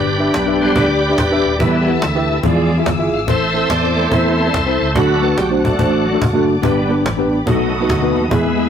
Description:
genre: uptempo gospel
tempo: 143 BPM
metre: 4/4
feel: swing 64% on 8ths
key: G major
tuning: A4 = 440 Hz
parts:
  - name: tine electric piano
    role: accompaniment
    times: 0.0-8.7 s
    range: G2 to F#5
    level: -17 LUFS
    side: left 1 dB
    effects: overdrive, slow stereo tremolo
  - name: bright tonewheel organ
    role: sustained chords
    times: 0.0-8.7 s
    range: D3 to F5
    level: -18 LUFS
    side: right 1 dB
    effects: slow rotary speaker, chorus vibrato
  - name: muted studio string section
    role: sustained chords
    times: 0.0-8.7 s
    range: D5 to E6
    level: -26 LUFS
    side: left 4 dB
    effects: none
  - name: fingered electric bass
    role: bass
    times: 0.0-8.7 s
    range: Eb1 to E2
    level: -21 LUFS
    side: equal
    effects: none
  - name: cajon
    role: drums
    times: 0.2-8.6 s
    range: none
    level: -21 LUFS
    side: equal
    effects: none
room: wet studio reverb, RT60 0.6 s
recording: rough rehearsal-room recording, warm saturation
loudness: -13 LUFS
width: side -8 dB against mid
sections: 0.0-8.7 A section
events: tonewheel organ solo 0.0-8.7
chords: 0.0 G; 1.6 Em; 2.4 E7b9; 3.3 Am; 5.0 D; 6.6 G; 7.5 B7

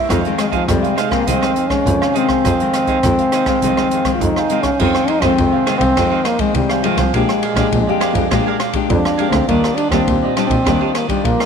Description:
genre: samba and choro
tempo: 102 BPM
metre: 4/4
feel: straight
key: F minor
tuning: A4 = 442 Hz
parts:
  - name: cavaquinho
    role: accompaniment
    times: 0.0-11.5 s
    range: D4 to F5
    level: -22 LUFS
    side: right 13 dB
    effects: none
  - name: nylon-string guitar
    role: accompaniment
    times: 0.0-11.5 s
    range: F2 to G4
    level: -20 LUFS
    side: left 11 dB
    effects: none
  - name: rich double bass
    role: bass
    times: 0.1-11.3 s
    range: Bb1 to F2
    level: -20 LUFS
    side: right 1 dB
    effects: none
  - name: open jazz drum kit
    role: drums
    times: 0.1-11.5 s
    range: crash cymbal, hi-hat, kick drum, ride cymbal, rim click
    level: -22 LUFS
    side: right 1 dB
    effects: none
  - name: warm trombone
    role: melody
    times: 0.4-11.5 s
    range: F3 to F4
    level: -18 LUFS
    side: equal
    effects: none
room: moderate echo chamber reverb, RT60 1.7 s, studio reverb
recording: 1960s-style stereo with parts hard left and right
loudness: -13 LUFS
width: side -6 dB against mid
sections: 0.0-4.8 A section; 4.8-11.5 B section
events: none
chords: 0.1 Fm7; 7.1 Bb6; 9.5 Ebmaj9

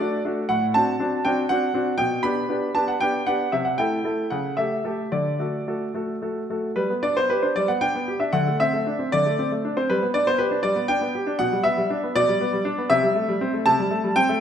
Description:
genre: classical-period piano sonatina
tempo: 78 BPM (dotted quarters)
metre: 6/8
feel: rubato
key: G major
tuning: A4 = 440 Hz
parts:
  - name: clear grand piano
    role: solo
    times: 0.0-14.4 s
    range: A2 to B5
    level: -20 LUFS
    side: equal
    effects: none
room: wet recital hall reverb, RT60 1.6 s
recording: none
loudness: -20 LUFS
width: side -8 dB against mid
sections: 0.0-6.8 A section; 6.8-14.4 B section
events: none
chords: 0.5 D7/A; 2.0 G/B; 3.5 Am7/C; 4.3 A7/C#; 5.1 D; 6.8 G; 8.3 D5; 9.9 G; 11.4 G/B; 12.9 Am7/C

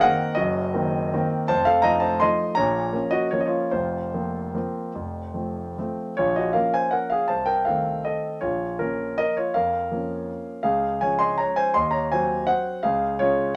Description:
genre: classical, piano waltz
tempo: 142-173 BPM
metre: 3/4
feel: rubato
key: Bb minor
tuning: A4 = 439 Hz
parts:
  - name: warm concert grand piano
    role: solo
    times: 0.0-13.6 s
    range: F1 to C6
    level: -24 LUFS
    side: equal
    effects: none
room: moderate studio reverb, RT60 0.6 s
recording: none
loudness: -24 LUFS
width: mono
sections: 0.0-6.2 A section; 6.2-13.6 B section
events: none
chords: 0.0 Cm7b5/Gb; 1.5 F7; 2.6 Bbm; 3.7 Fsus4; 5.0 F; 6.2 Bbm; 7.3 Adim/C; 8.4 Bbm; 10.7 Db; 11.7 Cdim/Eb; 12.8 Db

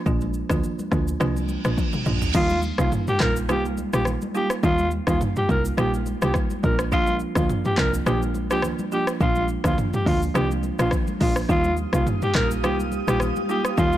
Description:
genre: afrobeats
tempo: 105 BPM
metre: 4/4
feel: swing 55% on 16ths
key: Eb major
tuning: A4 = 440 Hz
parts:
  - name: folk marimba with medium mallets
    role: accompaniment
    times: 0.0-14.0 s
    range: F3 to F4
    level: -27 LUFS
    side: right 5 dB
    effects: none
  - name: woody log drum bass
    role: bass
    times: 0.1-14.0 s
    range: Bb1 to Eb2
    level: -25 LUFS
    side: left 1 dB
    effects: none
  - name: deep house drum kit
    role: drums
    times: 0.1-14.0 s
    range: crash cymbal, handclaps, hi-hat, kick drum, rim click, shaker, toms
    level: -26 LUFS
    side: left 1 dB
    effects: none
  - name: congas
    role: percussion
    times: 0.1-14.0 s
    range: none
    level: -35 LUFS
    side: left 4 dB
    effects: none
  - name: reverse cymbal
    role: sound effects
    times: 1.5-2.3 s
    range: none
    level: -32 LUFS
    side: right 4 dB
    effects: none
  - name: growling alto saxophone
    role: melody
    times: 2.4-14.0 s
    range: F4 to Bb4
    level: -26 LUFS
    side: left 1 dB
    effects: digital delay
  - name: glassy FM pad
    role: sustained chords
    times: 11.8-14.0 s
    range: G4 to Eb6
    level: -31 LUFS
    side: left 1 dB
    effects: ensemble chorus, built-in reverb
room: little or no reverb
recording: blown-out, overdriven recording, overdrive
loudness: -20 LUFS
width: side -13 dB against mid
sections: 0.0-2.3 A section; 2.3-14.0 B section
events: reverse cymbal 1.5-2.3; drum fill 1.8-2.3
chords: 0.0 Bb; 2.3 Ebadd9; 6.6 Bb; 11.5 Ebadd9

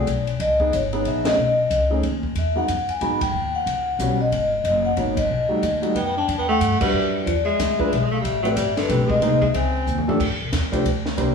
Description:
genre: jazz, small-group swing and bop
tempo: 184 BPM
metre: 3/4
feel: swing 62% on 8ths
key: E minor from 6.3 s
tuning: A4 = 436 Hz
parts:
  - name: vibraphone with soft mallets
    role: melody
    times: 0.0-10.0 s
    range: B4 to B5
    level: -22 LUFS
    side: left 3 dB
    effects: none
  - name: warm grand piano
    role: accompaniment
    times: 0.0-11.3 s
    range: G3 to C5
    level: -25 LUFS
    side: right 2 dB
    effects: none
  - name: upright bass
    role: bass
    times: 0.0-11.3 s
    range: F#1 to G#2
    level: -25 LUFS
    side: left 1 dB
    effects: none
  - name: compact cocktail drum kit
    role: drums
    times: 0.1-11.3 s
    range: crash cymbal, hi-hat, kick drum, ride cymbal, snare drum, toms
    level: -29 LUFS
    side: left 1 dB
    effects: none
  - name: breathy alto saxophone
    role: second line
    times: 6.0-10.0 s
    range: D3 to D4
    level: -25 LUFS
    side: right 2 dB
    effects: none
room: moderate studio reverb, RT60 0.9 s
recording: heard from further back in the room, studio reverb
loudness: -19 LUFS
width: side -6 dB against mid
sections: 0.0-6.3 A section; 6.3-11.3 B section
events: band accent 1.2, 3.2, 5.1, 6.8; drum fill 9.9-10.2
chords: 0.4 C#m9; 1.4 Badd9; 2.4 Emaj9; 3.3 D#7alt; 4.3 G#m9; 5.3 B7b13; 6.3 Em9; 7.3 E7b9; 8.2 Am9; 9.2 C7alt; 10.2 F5

